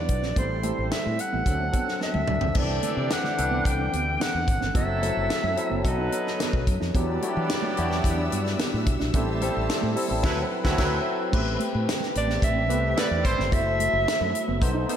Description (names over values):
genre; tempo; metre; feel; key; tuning
polished 1980s jazz-funk pop; 109 BPM; 4/4; straight; unclear; A4 = 440 Hz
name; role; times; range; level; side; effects
breathy soprano saxophone; melody; 0.0-6.6, 12.2-14.6 s; C5 to G5; -27 LUFS; right 1 dB; slapback echo, tape echo
barky tine electric piano; accompaniment; 0.0-15.0 s; D3 to A5; -29 LUFS; left 2 dB; overdrive, ensemble chorus, slapback echo
fretless electric bass; bass; 0.0-14.8 s; F#1 to E3; -28 LUFS; equal; lush chorus
mellow electric guitar; riff; 0.1-15.0 s; A3 to D#4; -34 LUFS; right 5 dB; analog chorus
tight funk drum kit; drums; 0.1-15.0 s; crash cymbal, hi-hat, kick drum, snare drum, toms; -27 LUFS; equal; none
clear horn section; second line; 2.6-13.4 s; E3 to D5; -34 LUFS; right 2 dB; slapback echo
warm studio string section; sustained chords; 6.9-15.0 s; F#3 to E6; -37 LUFS; left 1 dB; none
room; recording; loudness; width
moderate lush hall reverb, RT60 2.1 s; big arena sound; -22 LUFS; side -9 dB against mid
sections
0.0-2.6 A section; 2.6-11.3 B section; 11.3-15.0 C section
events
tine electric piano fill 1.7-2.6; drum fill 2.0-2.6; band accent 10.2-11.3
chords
0.4 Am7; 1.5 D7; 2.6 C69; 4.8 F#m7b5; 5.8 B7; 6.9 Em9; 9.1 Am7; 10.2 D13; 11.3 Am9; 13.5 F#m7b5